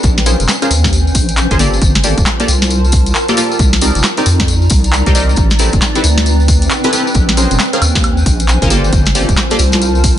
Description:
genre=UK garage, two-step garage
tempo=135 BPM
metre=4/4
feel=swing 62% on 16ths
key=unclear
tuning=A4 = 437 Hz
part: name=deep soft wobble bass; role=bass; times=0.0-10.2 s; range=D1 to F2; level=-13 LUFS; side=equal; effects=chorus
part: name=electronic kick drum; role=drums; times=0.0-10.1 s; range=none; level=-15 LUFS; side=equal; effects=small room ambience
part: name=punchy analog drum machine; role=drums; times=0.0-10.1 s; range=handclaps, hi-hat, snare drum, woodblock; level=-17 LUFS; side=equal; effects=small room ambience
part: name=tambourine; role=percussion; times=0.0-10.1 s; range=none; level=-20 LUFS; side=left 3 dB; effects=none
part: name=granular cloud pad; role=texture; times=0.0-10.2 s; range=C4 to Bb5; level=-20 LUFS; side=right 1 dB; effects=built-in reverb, sidechain pumping
part: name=punchy chord stab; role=stabs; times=0.3-9.6 s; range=Bb3 to D5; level=-17 LUFS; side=equal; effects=chorus, ping-pong delay
room=light reverb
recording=nothing above 10.7 kHz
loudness=-9 LUFS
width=side -11 dB against mid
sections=0.0-10.2 A section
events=none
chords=0.0 Bbm9; 1.6 Gm9; 3.6 Cm9; 5.4 Am9; 7.2 Bbm9; 8.7 Gm9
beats=| 0.04 0.48 0.93 1.37 | 1.82 2.26 2.71 3.15 | 3.60 4.04 4.48 4.93 | 5.37 5.82 6.26 6.71 | 7.15 7.59 8.04 8.48 | 8.93 9.37 9.82

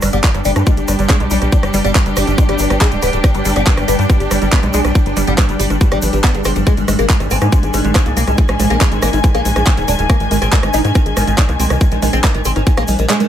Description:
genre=psychedelic trance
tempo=140 BPM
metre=4/4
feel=straight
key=unclear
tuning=A4 = 441 Hz
part: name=oud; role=melody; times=0.0-13.3 s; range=G2 to Eb4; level=-20 LUFS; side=left 1 dB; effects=phaser, sidechain pumping, dub echo
part: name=evolving wavetable pad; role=sustained chords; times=0.4-13.3 s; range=G3 to D4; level=-24 LUFS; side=left 2 dB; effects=ensemble chorus, built-in reverb, phaser, sidechain pumping
part: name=woody wave-folded pluck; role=riff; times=0.0-13.2 s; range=F3 to Ab4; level=-23 LUFS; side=moving between left 2 dB and right 7 dB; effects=chorus, auto-pan, sidechain pumping, dub echo
part: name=tight sequencer bass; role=bass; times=0.0-13.1 s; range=D1 to Ab2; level=-18 LUFS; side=equal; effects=none
part: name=garage drum kit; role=drums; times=0.0-13.3 s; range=handclaps, hi-hat, rim click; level=-20 LUFS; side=right 1 dB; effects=overdrive, small room ambience
part: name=egg shaker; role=percussion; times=0.0-13.3 s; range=none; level=-30 LUFS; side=left 2 dB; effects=none
part: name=muted studio string section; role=texture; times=0.0-13.3 s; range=Eb3 to Ab5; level=-23 LUFS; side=equal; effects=sidechain pumping
part: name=electronic kick drum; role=drums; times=0.2-12.8 s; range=none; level=-12 LUFS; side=equal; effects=overdrive, small room ambience
part: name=vowel-sweep wobble bass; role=second line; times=0.5-2.6, 7.3-9.2 s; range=Eb3 to D4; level=-33 LUFS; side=right 2 dB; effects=none
room=light reverb, digital ambience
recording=none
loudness=-12 LUFS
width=side -10 dB against mid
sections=0.0-13.3 A section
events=none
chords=0.0 G5; 6.7 Ab5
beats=0.24 0.67 1.10 | 1.52 1.95 2.38 2.81 | 3.24 3.67 4.10 4.52 | 4.95 5.38 5.81 6.24 | 6.67 7.10 7.52 7.95 | 8.38 8.81 9.24 9.67 | 10.10 10.52 10.95 11.38 | 11.81 12.24 12.67 13.10

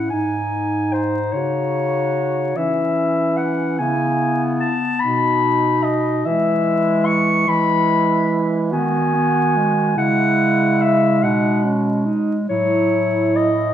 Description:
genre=classical, lyrical piece for single-reed quartet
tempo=48 BPM (dotted quarters)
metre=6/8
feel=rubato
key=E major from 7.5 s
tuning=A4 = 440 Hz
part: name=mellow clarinet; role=melody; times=0.0-13.7 s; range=B#4 to C#6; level=-19 LUFS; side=left 3 dB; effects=none
part: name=mellow alto saxophone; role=second line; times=0.0-13.7 s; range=C#4 to F#4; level=-23 LUFS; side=right 4 dB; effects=none
part: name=warm clarinet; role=accompaniment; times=0.0-13.5 s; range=F#3 to D#4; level=-23 LUFS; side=left 1 dB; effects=none
part: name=warm bass clarinet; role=bass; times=0.0-13.7 s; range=G#2 to E3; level=-23 LUFS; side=right 2 dB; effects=none
room=moderate recital hall reverb, RT60 1.5 s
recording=vinyl crackle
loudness=-16 LUFS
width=side -10 dB against mid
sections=0.0-13.7 A section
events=none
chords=0.1 G#5; 1.3 C#sus24; 2.6 E; 5.0 B; 6.2 E; 10.0 C#m; 12.5 F#m7/A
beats=| 0.12 1.34 | 2.56 3.80 | 5.01 6.25 | 7.47 8.72 | 9.97 11.23 | 12.49

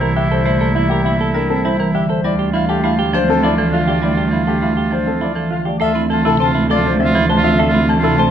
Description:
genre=classical, minimalist pattern music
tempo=101 BPM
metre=3/4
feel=straight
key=D minor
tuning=A4 = 440 Hz
part: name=warm baby grand piano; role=melody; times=0.0-8.3 s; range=G4 to A5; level=-20 LUFS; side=left 9 dB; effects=none
part: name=clear oboe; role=second line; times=0.0-8.2 s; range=E4 to F4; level=-24 LUFS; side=right 4 dB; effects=none
part: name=marimba with hard mallets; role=accompaniment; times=0.0-8.3 s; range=C3 to C4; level=-18 LUFS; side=right 1 dB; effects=none
part: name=semi-hollow electric guitar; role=arpeggios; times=0.0-8.3 s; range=C4 to C5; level=-22 LUFS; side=right 6 dB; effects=none
part: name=rich cello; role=bass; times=0.0-8.3 s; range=C2 to D2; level=-20 LUFS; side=right 2 dB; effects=none
room=moderate scoring stage reverb, RT60 1.8 s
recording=close, detailed microphones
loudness=-13 LUFS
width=side -9 dB against mid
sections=0.0-5.8 A section; 5.8-8.3 B section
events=none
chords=0.0 C9; 2.2 Dmadd9; 5.8 Dm7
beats=| 0.46 1.06 1.65 | 2.25 2.84 3.43 | 4.03 4.62 5.22 | 5.81 6.40 7.00 | 7.59 8.19

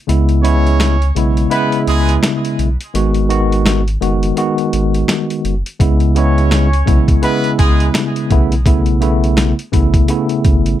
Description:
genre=hip hop, boom-bap hip-hop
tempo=84 BPM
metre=4/4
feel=swing 59% on 16ths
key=C# minor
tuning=A4 = 439 Hz
part: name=tine electric piano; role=accompaniment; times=0.1-10.8 s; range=C#3 to F#4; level=-15 LUFS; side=left 1 dB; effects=medium stereo tremolo
part: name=warm sub bass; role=bass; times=0.1-10.8 s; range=F#1 to C#2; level=-15 LUFS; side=equal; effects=none
part: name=boom bap sampler-style drum kit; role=drums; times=0.1-10.8 s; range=hi-hat, kick drum, snare drum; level=-15 LUFS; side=equal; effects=none
part: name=clear trumpet section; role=stabs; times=0.4-7.9 s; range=G#3 to C#5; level=-21 LUFS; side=right 2 dB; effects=tape echo
room=light reverb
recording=none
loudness=-12 LUFS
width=side -12 dB against mid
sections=0.0-10.8 A section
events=break 0.0-5.8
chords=0.1 C#m7; 2.9 G#m7; 5.8 C#m7; 8.3 B9sus4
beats=| 0.09 0.80 1.51 2.23 | 2.94 3.66 4.37 5.09 | 5.80 6.51 7.23 7.94 | 8.66 9.37 10.09

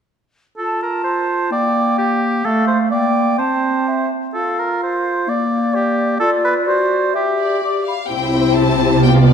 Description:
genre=quick classical-period movement for symphony orchestra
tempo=128 BPM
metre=2/4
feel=straight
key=C major from 6.2 s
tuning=A4 = 440 Hz
part: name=mellow concert flute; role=second line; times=0.6-7.9 s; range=D5 to D6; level=-22 LUFS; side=left 1 dB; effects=none
part: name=warm clarinet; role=second line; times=0.6-7.9 s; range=A3 to G4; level=-20 LUFS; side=equal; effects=none
part: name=warm oboe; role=second line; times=0.6-7.6 s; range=G4 to D5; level=-19 LUFS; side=right 2 dB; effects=none
part: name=rich chamber violin section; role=melody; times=7.4-9.3 s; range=D5 to A5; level=-22 LUFS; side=left 4 dB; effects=none
part: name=dark chamber violin section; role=second line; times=8.1-9.3 s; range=G4 to D5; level=-22 LUFS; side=left 6 dB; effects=none
part: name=rich chamber viola section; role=accompaniment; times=8.1-9.3 s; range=B3 to F4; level=-18 LUFS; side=left 1 dB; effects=none
part: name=mellow French horn section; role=sustained chords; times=8.1-9.3 s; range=B3 to F4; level=-19 LUFS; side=left 8 dB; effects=none
part: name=warm chamber double bass section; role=bass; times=8.1-9.3 s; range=C2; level=-15 LUFS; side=right 1 dB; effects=none
part: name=warm symphonic cello section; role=bass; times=8.1-9.3 s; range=C3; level=-19 LUFS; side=right 5 dB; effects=none
room=moderate concert hall reverb, RT60 2.0 s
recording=none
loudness=-15 LUFS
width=side -7 dB against mid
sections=0.6-8.1 A section; 8.1-9.3 B section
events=none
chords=0.6 F; 1.5 Gm/Bb; 2.4 F/A; 2.9 Gm/Bb; 3.4 Am/C; 3.9 C; 4.3 N.C.; 5.3 Gm/Bb; 6.2 Dm/F; 6.7 D7/F#; 7.1 Em7/G; 7.6 G5; 8.1 C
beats=| 0.57 1.05 | 1.51 1.98 | 2.44 2.91 | 3.38 3.86 | 4.33 4.81 | 5.27 5.73 | 6.20 6.66 | 7.14 7.62 | 8.10 8.57 | 9.04

